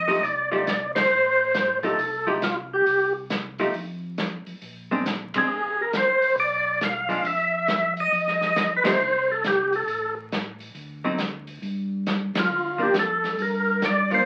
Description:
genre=soul jazz organ trio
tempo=137 BPM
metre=4/4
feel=swing 65% on 8ths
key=F mixolydian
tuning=A4 = 440 Hz
part: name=percussive tonewheel organ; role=melody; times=0.0-14.3 s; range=F4 to F5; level=-24 LUFS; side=equal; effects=slow rotary speaker, overdrive, chorus vibrato
part: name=mellow tonewheel organ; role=bass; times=0.0-14.2 s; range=F1 to G2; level=-37 LUFS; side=equal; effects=slow rotary speaker
part: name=archtop guitar, miked and amplified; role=accompaniment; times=0.1-14.3 s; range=D3 to G4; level=-28 LUFS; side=equal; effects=none
part: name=open jazz drum kit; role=drums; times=0.1-14.2 s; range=hi-hat, kick drum, ride cymbal, snare drum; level=-33 LUFS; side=equal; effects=none
room=wet club reverb, RT60 0.5 s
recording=very old 78 rpm record, vinyl crackle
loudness=-24 LUFS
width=mono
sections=0.0-14.3 A section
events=band accent 0.9, 5.3, 8.8, 12.3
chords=0.0 F9; 2.9 Cm; 3.7 N.C.; 4.6 Bb9; 6.4 Bdim; 8.1 F9; 9.9 N.C.; 10.8 D7b9; 11.6 Gm7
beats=0.23 0.67 | 1.11 1.55 1.98 2.42 | 2.86 3.30 3.74 4.17 | 4.61 5.05 5.49 5.93 | 6.37 6.80 7.24 7.68 | 8.12 8.56 9.00 9.43 | 9.87 10.31 10.75 11.19 | 11.63 12.07 12.51 12.94 | 13.38 13.82

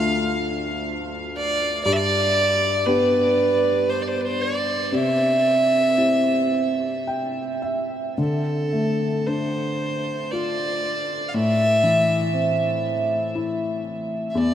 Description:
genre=celtic folk, Celtic slow air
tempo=54-61 BPM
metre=3/4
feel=rubato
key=D dorian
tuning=A4 = 440 Hz
part: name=dark fiddle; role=melody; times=0.0-14.5 s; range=A4 to F5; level=-21 LUFS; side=right 1 dB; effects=none
part: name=felt-muted upright piano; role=accompaniment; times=0.0-14.5 s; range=D2 to G5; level=-24 LUFS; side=left 1 dB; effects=none
room=wet huge ambient reverb, RT60 7.6 s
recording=in a vast, echoing space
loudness=-19 LUFS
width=side -10 dB against mid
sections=0.0-8.2 A section; 8.2-14.5 B section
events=felt piano fill 6.5-8.2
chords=0.0 Dm; 1.9 G; 4.9 C; 8.2 Dm; 11.3 Am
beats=0.88 | 1.86 2.87 3.90 | 4.93 5.99 7.08 | 8.19 9.27 10.33 | 11.34 12.35 13.36 | 14.36

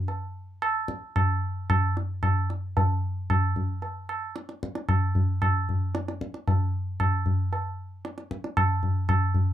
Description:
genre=indian classical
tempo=113 BPM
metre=7/4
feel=straight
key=none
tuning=none
part: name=tabla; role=percussion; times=0.1-9.5 s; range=none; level=-24 LUFS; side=equal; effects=none
room=wet small room ambience, RT60 0.5 s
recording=dark, warm production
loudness=-24 LUFS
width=side -11 dB against mid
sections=0.0-9.5 A section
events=speeding up 0.0-9.5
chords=none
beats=0.08 0.61 1.15 1.69 2.22 | 2.76 3.29 3.82 4.35 4.88 5.41 5.94 | 6.47 6.99 7.52 8.04 8.57 9.09

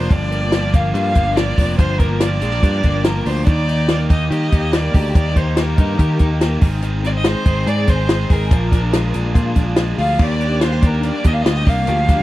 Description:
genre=jangly indie pop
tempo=143 BPM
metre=4/4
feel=straight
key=Bb mixolydian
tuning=A4 = 440 Hz
part: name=warm violin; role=melody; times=0.0-12.2 s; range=Bb4 to F5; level=-23 LUFS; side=right 1 dB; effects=slapback echo
part: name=overdriven semi-hollow guitar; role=accompaniment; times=0.0-12.2 s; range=G2 to Bb4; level=-28 LUFS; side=right 4 dB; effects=none
part: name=direct-recorded clean electric guitar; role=arpeggios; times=0.0-12.2 s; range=Eb3 to Ab4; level=-24 LUFS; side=left 4 dB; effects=ensemble chorus, slapback echo
part: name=picked electric bass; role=bass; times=0.0-12.2 s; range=F1 to Eb3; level=-19 LUFS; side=equal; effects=none
part: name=compact cocktail drum kit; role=drums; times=0.1-12.2 s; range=crash cymbal, hi-hat, kick drum, snare drum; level=-15 LUFS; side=equal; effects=none
room=little or no reverb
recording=dry, close 1970s-style studio recording, vinyl crackle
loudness=-14 LUFS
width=side -16 dB against mid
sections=0.0-10.2 A section; 10.2-12.2 B section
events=none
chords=0.1 Gm7; 3.5 Eb; 6.6 Ab; 8.5 Bb7; 10.2 Ebmaj7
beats=| 0.12 0.54 0.96 1.38 | 1.80 2.22 2.64 3.06 | 3.48 3.90 4.32 4.74 | 5.16 5.58 6.00 6.42 | 6.84 7.26 7.68 8.10 | 8.52 8.94 9.36 9.78 | 10.20 10.62 11.04 11.46 | 11.88

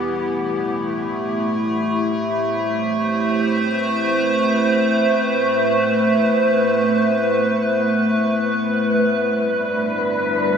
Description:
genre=ambient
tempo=free time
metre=none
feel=none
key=unclear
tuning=A4 = 439 Hz
part: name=evolving wavetable pad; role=sustained chords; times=0.0-10.6 s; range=G3 to C5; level=-17 LUFS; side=equal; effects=chorus, built-in reverb, shimmer reverb
part: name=wind-like tuned noise texture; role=texture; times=9.5-10.6 s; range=B4 to B5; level=-26 LUFS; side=left 2 dB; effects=built-in reverb, shimmer reverb
room=wet huge ambient reverb, RT60 7.9 s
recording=nothing above 10.9 kHz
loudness=-17 LUFS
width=side -7 dB against mid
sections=0.0-9.3 A section; 9.3-10.6 B section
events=none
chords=0.0 Am7; 9.3 G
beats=free time

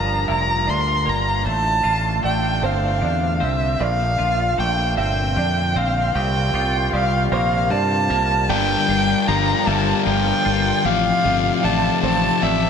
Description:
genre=post-rock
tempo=51 BPM (dotted quarters)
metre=6/8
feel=straight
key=G dorian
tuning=A4 = 442 Hz
part: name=muted violin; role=melody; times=0.0-12.7 s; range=E5 to C6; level=-20 LUFS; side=right 1 dB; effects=ping-pong delay
part: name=hand-pumped harmonium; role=sustained chords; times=0.0-12.7 s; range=Bb2 to D5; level=-29 LUFS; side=right 4 dB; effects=none
part: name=twelve-string electric guitar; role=arpeggios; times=0.0-12.7 s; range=G2 to F4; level=-27 LUFS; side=left 2 dB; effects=analog chorus, ping-pong delay
part: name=growling fingered electric bass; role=bass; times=0.0-12.7 s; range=F1 to G2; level=-23 LUFS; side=equal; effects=overdrive
part: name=felt-muted upright piano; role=arpeggios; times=0.3-12.7 s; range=C5 to E5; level=-31 LUFS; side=right 6 dB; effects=ping-pong delay
part: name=sludgy distorted guitar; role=riff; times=8.5-12.7 s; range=F2 to G3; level=-20 LUFS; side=left 12 dB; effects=overdrive
room=wet plate reverb, RT60 3.1 s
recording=dreamy mix soaked in reverb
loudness=-17 LUFS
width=side -7 dB against mid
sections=0.0-8.5 A section; 8.5-12.7 B section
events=build-up 0.0-8.5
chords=0.0 Gm7; 1.4 F6/A; 3.8 Bbmaj9; 6.2 C7sus4; 8.5 Gm7; 10.8 F6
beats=0.28 | 1.45 2.63 | 3.80 4.98 | 6.15 7.33 | 8.50 9.68 | 10.85 12.03

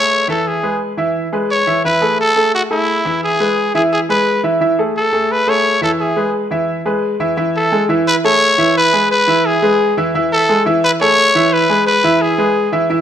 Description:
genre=latin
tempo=174 BPM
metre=4/4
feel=straight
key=A major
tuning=A4 = 440 Hz
part: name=growling trumpet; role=melody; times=0.0-12.7 s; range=E4 to C#5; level=-14 LUFS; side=equal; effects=none
part: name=clear grand piano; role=accompaniment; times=0.0-13.0 s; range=E3 to E5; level=-16 LUFS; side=equal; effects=none
room=moderate large studio reverb, RT60 1.2 s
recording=none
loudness=-12 LUFS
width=side -9 dB against mid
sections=0.0-7.4 A section; 7.4-13.0 B section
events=none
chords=0.5 E; 1.8 A5; 3.2 E; 4.6 Amaj7; 6.0 E; 7.4 Amaj7; 8.8 E; 10.1 Amaj7; 11.5 E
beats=0.11 | 0.46 0.80 1.15 1.49 | 1.84 2.19 2.53 2.88 | 3.23 3.57 3.92 4.26 | 4.61 4.96 5.30 5.65 | 5.99 6.34 6.68 7.03 | 7.38 7.72 8.07 8.41 | 8.76 9.10 9.45 9.79 | 10.14 10.48 10.83 11.17 | 11.52 11.86 12.21 12.55 | 12.90

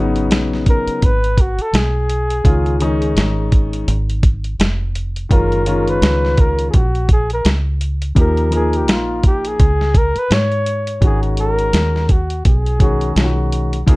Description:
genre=hip hop, jazz-hop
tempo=84 BPM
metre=4/4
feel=swing 58% on 16ths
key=G# dorian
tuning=A4 = 443 Hz
part: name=dark baby grand piano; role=accompaniment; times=0.0-14.0 s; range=C#3 to A#4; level=-20 LUFS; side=left 2 dB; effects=none
part: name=deep dub fingered electric bass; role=bass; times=0.0-14.0 s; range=E#1 to G#2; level=-18 LUFS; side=equal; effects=none
part: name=dusty soul sampler-style drum kit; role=drums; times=0.2-14.0 s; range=hi-hat, kick drum, snare drum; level=-15 LUFS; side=equal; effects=none
part: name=breathy flugelhorn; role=melody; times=0.7-13.5 s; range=E#4 to C#5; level=-20 LUFS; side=equal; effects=none
room=light reverb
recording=dark, warm production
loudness=-13 LUFS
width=side -22 dB against mid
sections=0.0-11.0 A section; 11.0-14.0 B section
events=flugelhorn solo 0.0-11.0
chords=0.0 G#m9; 2.5 C#; 5.3 F#maj7; 8.2 D#7(no3); 11.0 G#m9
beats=0.31 1.02 1.74 | 2.45 3.17 3.88 4.59 | 5.31 6.02 6.74 7.45 | 8.16 8.88 9.59 10.31 | 11.02 11.74 12.45 13.16 | 13.88

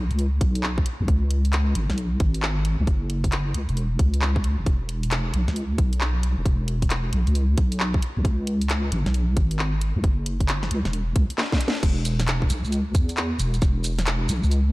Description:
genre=UK garage, two-step garage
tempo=134 BPM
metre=4/4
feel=swing 64% on 16ths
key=E major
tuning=A4 = 440 Hz
part: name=deep soft wobble bass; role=bass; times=0.0-14.7 s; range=E1 to E2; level=-22 LUFS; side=equal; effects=chorus, tube saturation
part: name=garage drum kit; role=drums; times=0.1-14.6 s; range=crash cymbal, handclaps, hi-hat, shaker, snare drum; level=-29 LUFS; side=equal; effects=studio reverb
part: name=electronic kick drum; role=drums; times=0.4-13.7 s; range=none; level=-22 LUFS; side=equal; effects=studio reverb
room=digital ambience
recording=dark, warm production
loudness=-21 LUFS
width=side -20 dB against mid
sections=0.0-11.8 A section; 11.8-14.7 B section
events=drum fill 11.4-11.8; drop 11.8-14.7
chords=none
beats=0.19 0.64 | 1.08 1.53 1.98 2.43 | 2.87 3.32 3.77 4.22 | 4.67 5.11 5.56 6.01 | 6.46 6.90 7.35 7.80 | 8.25 8.70 9.14 9.59 | 10.04 10.49 10.93 11.38 | 11.83 12.28 12.72 13.17 | 13.62 14.07 14.52

